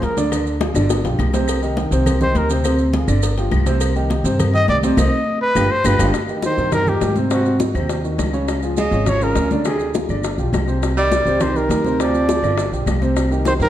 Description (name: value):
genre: Afro-Cuban jazz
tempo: 205 BPM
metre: 4/4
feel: straight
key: C minor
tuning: A4 = 441 Hz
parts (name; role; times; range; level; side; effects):
- mellow trumpet; melody; 0.0-0.2, 2.2-2.5, 4.5-13.7 s; Gb4 to Eb5; -20 LUFS; equal; none
- warm grand piano; accompaniment; 0.0-13.7 s; C3 to D5; -22 LUFS; equal; none
- upright bass; bass; 0.0-13.7 s; G1 to Ab2; -20 LUFS; equal; none
- congas; percussion; 0.0-13.7 s; none; -25 LUFS; right 1 dB; none
- cowbell and bongos; percussion; 0.0-13.6 s; none; -26 LUFS; left 5 dB; none
- maracas; percussion; 0.0-13.7 s; none; -35 LUFS; right 9 dB; none
- claves; percussion; 0.3-13.3 s; none; -34 LUFS; left 6 dB; none
- breathy baritone saxophone; second line; 6.5-13.7 s; Bb2 to Ab3; -25 LUFS; right 4 dB; none
room: wet recital hall reverb, RT60 1.6 s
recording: dark, warm production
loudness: -16 LUFS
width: side -12 dB against mid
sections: 0.0-6.1 A section; 6.1-13.7 B section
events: trumpet solo 0.0-6.1; drum fill 0.6-1.5; band accent 5.0-6.1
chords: 0.3 Ddim; 0.9 G7; 1.5 Cm; 2.6 Dm7b5; 3.2 G5; 3.8 Cm; 5.6 G5; 6.1 Cm7; 7.3 Ab7; 8.5 Db69; 9.7 Dm7b5; 10.2 G7; 10.8 Cm7; 12.0 Dm7b5; 12.6 G7; 13.2 Cm